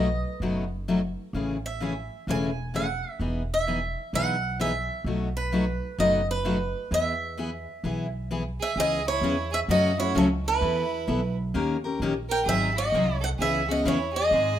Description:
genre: acoustic string swing (jazz manouche)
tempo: 129 BPM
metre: 4/4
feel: swing 63% on 8ths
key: E major, C# minor from 8.8 s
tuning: A4 = 440 Hz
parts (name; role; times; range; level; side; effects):
- picked swing-style acoustic guitar; melody; 0.0-14.6 s; A4 to G#5; -27 LUFS; right 1 dB; plate reverb
- picked steel-string acoustic guitar; accompaniment; 0.0-14.5 s; B2 to A#4; -27 LUFS; left 2 dB; plate reverb
- upright bass; bass; 0.0-14.6 s; E1 to G#2; -31 LUFS; right 1 dB; none
- bright violin; second line; 8.6-14.6 s; C#4 to A#4; -32 LUFS; right 5 dB; plate reverb
room: wet small room reverb, RT60 0.5 s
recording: rough home demo mix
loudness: -24 LUFS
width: side -11 dB against mid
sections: 0.0-8.8 A section; 8.8-14.6 B section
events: none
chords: 0.0 B7; 1.3 Amaj7; 3.2 Emaj7; 5.1 B7; 6.9 E; 8.8 C#m7; 9.7 F#m; 10.6 Asus2/E; 11.5 D#7; 12.5 G#7; 13.4 C#m7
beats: 0.41 0.88 | 1.34 1.80 2.27 2.73 | 3.20 3.66 4.13 4.59 | 5.05 5.52 5.98 6.45 | 6.91 7.37 7.84 8.30 | 8.77 9.23 9.69 10.15 | 10.62 11.08 11.54 12.01 | 12.47 12.93 13.39 13.85 | 14.32

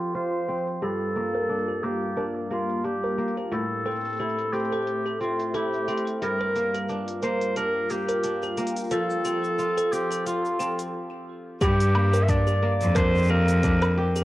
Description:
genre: folktronica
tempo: 89 BPM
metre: 4/4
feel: swing 56% on 16ths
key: G dorian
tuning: A4 = 440 Hz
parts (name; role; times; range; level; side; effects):
- warm clarinet; melody; 0.0-14.0 s; F4 to E5; -28 LUFS; equal; cassette tape, tape echo
- warm analog pad; sustained chords; 0.0-10.9 s; F3 to G5; -33 LUFS; equal; chorus, cassette tape
- kora; arpeggios; 0.0-14.2 s; G2 to G4; -31 LUFS; left 1 dB; cassette tape
- organic electronic drum kit; drums; 0.0-14.2 s; finger snaps, hi-hat, shaker, woodblock; -36 LUFS; left 1 dB; cassette tape
- music box; second line; 0.8-14.2 s; F4 to Bb4; -31 LUFS; equal; cassette tape, tape echo
- bright cello; bass; 11.6-14.2 s; F2 to G2; -21 LUFS; equal; none
- electronic kick drum; drums; 11.6-13.8 s; none; -26 LUFS; equal; cassette tape
room: light reverb, small room ambience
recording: home recording on cassette, low-pass filter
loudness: -23 LUFS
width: side -16 dB against mid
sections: 0.0-11.6 A section; 11.6-14.2 B section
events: filter sweep on kora 0.0-11.6; filter sweep on analog synth pad 0.0-11.6; filter sweep 0.0-11.6; stop 10.9-11.6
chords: 0.0 Fadd9; 0.8 Gm7; 3.5 Am; 6.2 Gm7; 8.9 Fadd9; 11.6 Gm7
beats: 0.15 | 0.82 1.50 2.17 2.85 | 3.52 4.20 4.87 5.54 | 6.22 6.89 7.57 8.24 | 8.91 9.59 10.26 10.94 | 11.61 12.29 12.96 13.63

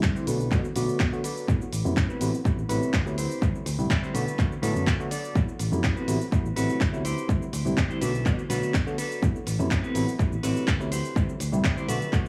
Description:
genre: filtered disco house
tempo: 124 BPM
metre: 4/4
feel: straight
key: A dorian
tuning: A4 = 436 Hz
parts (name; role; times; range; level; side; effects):
- bell-like tine electric piano; accompaniment; 0.0-12.3 s; C3 to B4; -32 LUFS; equal; phaser, vintage 12-bit sampler grit, sidechain pumping, low-pass filter, analog delay
- clean electric guitar; riff; 0.0-12.3 s; C4 to D5; -36 LUFS; equal; vintage 12-bit sampler grit, sidechain pumping, low-pass filter, analog delay
- fingered electric bass; bass; 0.0-12.3 s; A1 to B2; -32 LUFS; equal; sidechain pumping, low-pass filter
- electronic kick drum; drums; 0.0-12.2 s; none; -28 LUFS; equal; overdrive
- punchy analog drum machine; drums; 0.0-12.3 s; cabasa, handclaps, hi-hat; -36 LUFS; equal; sidechain pumping on cymbals, sidechain pumping on perc, sidechain pumping on hats, analog delay
room: light reverb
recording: echo-heavy mix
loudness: -26 LUFS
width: mono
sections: 0.0-12.3 A section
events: filter sweep 0.0-12.3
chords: 0.3 Bm7; 1.5 Am69; 3.2 D9sus4; 4.1 Bm7; 5.4 Am69; 7.0 D9sus4; 8.0 Bm7; 9.2 Am69; 10.9 D9sus4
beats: 0.03 0.52 1.00 | 1.48 1.97 2.45 2.94 | 3.42 3.90 4.39 4.87 | 5.35 5.84 6.32 6.81 | 7.29 7.77 8.26 8.74 | 9.22 9.71 10.19 10.68 | 11.16 11.64 12.13

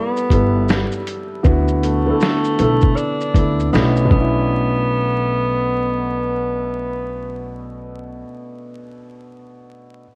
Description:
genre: lo-fi hip hop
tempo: 79 BPM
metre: 4/4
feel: swing 63% on 16ths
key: B minor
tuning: A4 = 439 Hz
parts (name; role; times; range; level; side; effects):
- mellow tenor saxophone; melody; 0.0-8.2 s; A3 to D4; -24 LUFS; equal; low-pass filter
- warm upright piano; accompaniment; 0.0-10.0 s; B2 to D5; -24 LUFS; equal; cassette tape, low-pass filter
- lo-fi sampler-style drum kit; drums; 0.2-4.3 s; hi-hat, kick drum, shaker, snare drum; -19 LUFS; equal; vintage 12-bit sampler grit
- upright bass; bass; 0.3-8.2 s; G1 to D2; -24 LUFS; equal; none
room: light reverb, small room ambience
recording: worn, warbling old tape, cassette tape, vinyl crackle, warbly pitch drift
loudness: -18 LUFS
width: mono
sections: 0.0-4.5 A section; 4.5-7.5 B section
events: none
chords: 0.0 G69; 1.4 D69; 3.7 Bm11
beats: 0.69 | 1.45 2.21 2.97 3.73 | 4.49 5.25 6.00 6.76

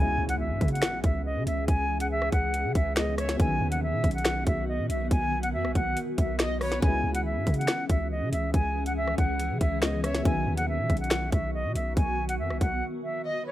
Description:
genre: hip hop, drill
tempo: 140 BPM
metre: 4/4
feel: half-time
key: C# minor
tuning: A4 = 440 Hz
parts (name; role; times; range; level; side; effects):
- silver concert flute; melody; 0.0-13.5 s; C#5 to G#5; -30 LUFS; equal; none
- dark concert grand piano; accompaniment; 0.0-13.5 s; B2 to E4; -37 LUFS; left 1 dB; none
- granular cloud pad; sustained chords; 0.1-13.5 s; D#3 to G#4; -34 LUFS; left 1 dB; built-in reverb
- long sustained 808-style bass; bass; 0.0-12.8 s; B1 to C#3; -30 LUFS; equal; none
- impact; sound effects; 0.0-1.7 s; none; -42 LUFS; equal; none
- drill drum kit; drums; 0.3-12.7 s; finger snaps, hi-hat, kick drum, rim click, snare drum; -26 LUFS; equal; none
- warm studio violin section; second line; 3.2-3.4, 6.4-6.8, 10.0-10.2, 13.3-13.5 s; B4 to E5; -41 LUFS; left 1 dB; tape echo
room: studio reverb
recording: rough home demo mix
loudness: -25 LUFS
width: side -14 dB against mid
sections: 0.0-13.5 A section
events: impact 0.0-1.7; break 12.8-13.5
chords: 0.0 C#m; 3.4 B; 6.8 C#m; 10.3 B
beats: 0.40 0.82 1.25 | 1.68 2.11 2.54 2.97 | 3.40 3.83 4.25 4.68 | 5.11 5.54 5.97 6.40 | 6.83 7.25 7.68 8.11 | 8.54 8.97 9.40 9.82 | 10.25 10.68 11.11 11.54 | 11.97 12.40 12.82 13.25

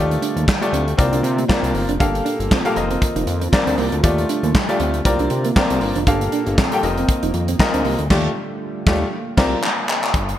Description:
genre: early-eighties boogie funk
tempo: 118 BPM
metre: 4/4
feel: swing 56% on 16ths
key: unclear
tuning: A4 = 439 Hz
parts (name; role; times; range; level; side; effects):
- clear baby grand piano; accompaniment; 0.0-9.6 s; A3 to G5; -22 LUFS; left 2 dB; none
- chorused pulse-width pad; sustained chords; 0.0-10.1 s; Bb2 to A4; -29 LUFS; right 1 dB; none
- fat analog bass; bass; 0.0-10.4 s; F1 to C3; -22 LUFS; equal; none
- mellow electric guitar; riff; 0.1-8.0 s; Bb3 to Eb4; -26 LUFS; right 5 dB; lush chorus
- modern studio drum kit; drums; 0.1-10.4 s; crash cymbal, handclaps, hi-hat, kick drum, snare drum; -19 LUFS; equal; gated reverb
room: moderate lush hall reverb, RT60 2.1 s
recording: bright 1980s-style digital production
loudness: -16 LUFS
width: side -12 dB against mid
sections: 0.0-10.1 A section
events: band accent 8.1-10.1; drum fill 9.1-10.1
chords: 0.0 Ebmaj9#11; 1.0 C9sus4; 2.0 Gm9; 2.8 F7sus4; 4.0 Ebmaj9#11; 5.1 C9sus4; 6.1 Gm9; 6.8 F7sus4; 8.1 Ebmaj9#11; 9.1 C9sus4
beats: 0.48 0.99 1.50 | 2.00 2.51 3.02 3.53 | 4.04 4.54 5.05 5.56 | 6.07 6.58 7.09 7.60 | 8.11 8.61 9.12 9.63 | 10.14

